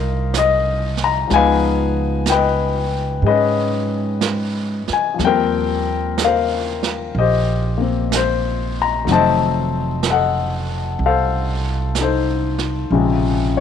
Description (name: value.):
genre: jazz ballad.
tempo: 62 BPM.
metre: 4/4.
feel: swing 67% on 8ths.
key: unclear.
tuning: A4 = 440 Hz.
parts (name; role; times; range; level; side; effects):
warm baby grand piano; accompaniment; 0.0-13.6 s; C3 to Bb5; -18 LUFS; left 8 dB; none.
upright bass; bass; 0.0-13.6 s; F1 to Ab2; -21 LUFS; right 2 dB; none.
jazz brush drum kit; drums; 0.3-13.6 s; brushed snare drum, hi-hat, snare drum; -27 LUFS; right 9 dB; none.
room: light reverb, small room ambience.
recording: 1960s-style stereo with parts hard left and right.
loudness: -16 LUFS.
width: side -8 dB against mid.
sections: 0.0-13.6 A section.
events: none.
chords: 0.0 Abmaj9 (rootless); 1.3 Db9; 5.2 Eb6; 9.1 F7b9; 12.9 Bbm9.